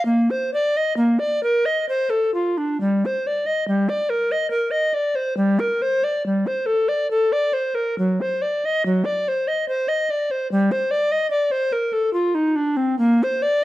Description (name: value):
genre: classical, baroque-style fantasia for unaccompanied recorder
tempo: 62-74 BPM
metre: 3/4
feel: rubato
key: G minor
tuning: A4 = 442 Hz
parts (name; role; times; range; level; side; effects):
- bright bass recorder; solo; 0.0-13.6 s; F#3 to Eb5; -18 LUFS; equal; none
room: moderate stone room reverb, RT60 1.1 s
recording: dark, warm production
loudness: -18 LUFS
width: side -16 dB against mid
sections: 0.0-2.8 A section; 2.8-13.6 A section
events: none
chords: none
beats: | 0.08 1.00 1.90 | 2.84 3.72 4.57 | 5.42 6.27 7.11 | 7.99 8.84 9.67 | 10.49 11.30 12.12 | 12.99